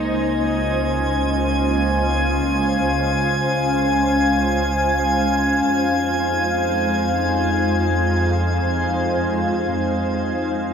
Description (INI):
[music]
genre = ambient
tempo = free time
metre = none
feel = none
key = F minor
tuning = A4 = 442 Hz
[part]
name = glassy FM pad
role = sustained chords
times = 0.0-10.7 s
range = Ab3 to F5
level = -20 LUFS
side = equal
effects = ensemble chorus, built-in reverb, shimmer reverb
[part]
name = muted symphonic double bass section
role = bass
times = 0.0-10.7 s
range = Db2 to F2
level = -24 LUFS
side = equal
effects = none
[part]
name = drifting glass-harmonics texture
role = texture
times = 0.0-10.7 s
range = Ab5 to Ab6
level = -23 LUFS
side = left 1 dB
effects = chorus, built-in reverb, shimmer reverb
[sound]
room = wet huge ambient reverb, RT60 9.2 s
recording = in a vast, echoing space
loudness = -17 LUFS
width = side -7 dB against mid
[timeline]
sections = 0.0-10.7 A section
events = none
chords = 0.0 Dbmaj7; 5.7 Fm7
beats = free time